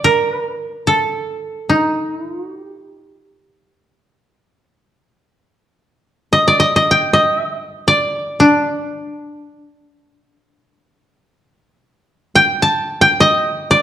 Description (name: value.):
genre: japanese traditional, Japanese chamber music.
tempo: free time.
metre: none.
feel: none.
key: D miyako bushi.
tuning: A4 = 440 Hz.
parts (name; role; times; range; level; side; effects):
koto; solo; 0.0-13.8 s; D4 to A5; -13 LUFS; equal; none.
room: moderate recital hall reverb, RT60 1.5 s.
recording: dark, warm production.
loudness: -13 LUFS.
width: side -11 dB against mid.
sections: 0.0-11.5 A section; 11.5-13.8 A section.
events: none.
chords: none.